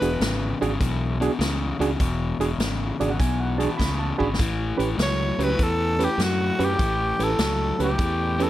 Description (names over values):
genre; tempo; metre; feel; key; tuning
electric blues shuffle; 100 BPM; 4/4; swing 68% on 8ths; unclear; A4 = 441 Hz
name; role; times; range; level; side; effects
growling tenor saxophone; melody; 0.0-0.6, 5.0-8.5 s; F#4 to C#5; -25 LUFS; equal; none
bright reed electric piano; accompaniment; 0.0-8.5 s; C#4 to B5; -26 LUFS; right 5 dB; fast tremolo
overdriven semi-hollow guitar; riff; 0.0-8.5 s; E2 to F#3; -27 LUFS; left 4 dB; none
fingered electric bass; bass; 0.0-8.5 s; E1 to F#2; -27 LUFS; equal; none
swinging big-band drum kit; drums; 0.0-8.5 s; hi-hat, kick drum, snare drum; -28 LUFS; equal; none
room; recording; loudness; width
light reverb; none; -21 LUFS; side -14 dB against mid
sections
0.0-8.5 A section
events
reed electric piano fill 2.6-4.4; drum fill 4.1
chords
0.0 E7; 4.4 A7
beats
0.21 0.81 1.40 | 2.00 2.60 3.20 3.79 | 4.39 4.99 5.59 6.19 | 6.79 7.39 7.99